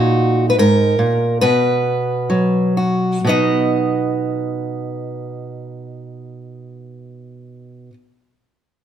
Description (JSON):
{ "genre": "folk, solo fingerstyle acoustic guitar", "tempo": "63-77 BPM", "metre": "4/4", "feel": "straight", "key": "B major", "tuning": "A4 = 440 Hz", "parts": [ { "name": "fingerpicked steel-string acoustic guitar", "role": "solo", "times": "0.0-7.9 s", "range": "G#2 to D#5", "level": "-16 LUFS", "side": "right 1 dB", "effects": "none" } ], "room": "light reverb", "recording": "none", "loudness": "-15 LUFS", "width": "side -9 dB against mid", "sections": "0.0-3.2 A section; 3.2-7.0 B section", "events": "slowing down 0.0-3.2", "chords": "0.0 D#m/A#; 1.4 B5; 3.2 B" }